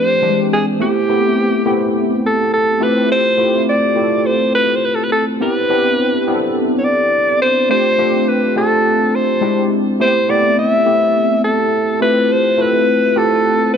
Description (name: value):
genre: pop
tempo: 104 BPM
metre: 4/4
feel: straight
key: unclear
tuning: A4 = 439 Hz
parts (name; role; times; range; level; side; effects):
- breathy alto saxophone; melody; 0.0-13.8 s; G4 to E5; -15 LUFS; equal; none
- tine electric piano; accompaniment; 0.0-13.8 s; E3 to A4; -16 LUFS; equal; overdrive, analog chorus
room: light reverb, studio reverb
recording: none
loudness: -12 LUFS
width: side -7 dB against mid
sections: 0.0-13.8 A section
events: none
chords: 0.2 E7alt; 0.8 Am7; 2.8 Fmaj7; 5.4 Cmaj9; 7.7 G9sus4; 9.4 E7alt; 10.0 Am7; 12.0 Fmaj7